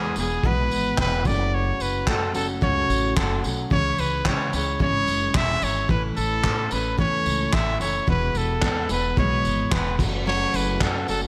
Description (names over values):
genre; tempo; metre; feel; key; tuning
acoustic pop; 110 BPM; 4/4; swing 55% on 16ths; unclear; A4 = 440 Hz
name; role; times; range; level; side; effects
clear trumpet; melody; 0.0-11.2 s; G#4 to E5; -28 LUFS; equal; slapback echo
picked steel-string acoustic guitar; accompaniment; 0.0-11.3 s; E2 to F#4; -30 LUFS; equal; none
upright bass; bass; 0.0-11.3 s; E1 to C#3; -30 LUFS; equal; none
cloth-damped thuddy drum kit; drums; 0.2-11.2 s; crash cymbal, handclaps, kick drum, tambourine; -28 LUFS; equal; none
room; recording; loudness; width
light reverb, small room ambience; none; -23 LUFS; mono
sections
0.0-11.3 A section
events
none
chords
0.0 E; 1.3 F#m; 3.7 C#m; 5.9 A; 8.1 E; 10.0 F#m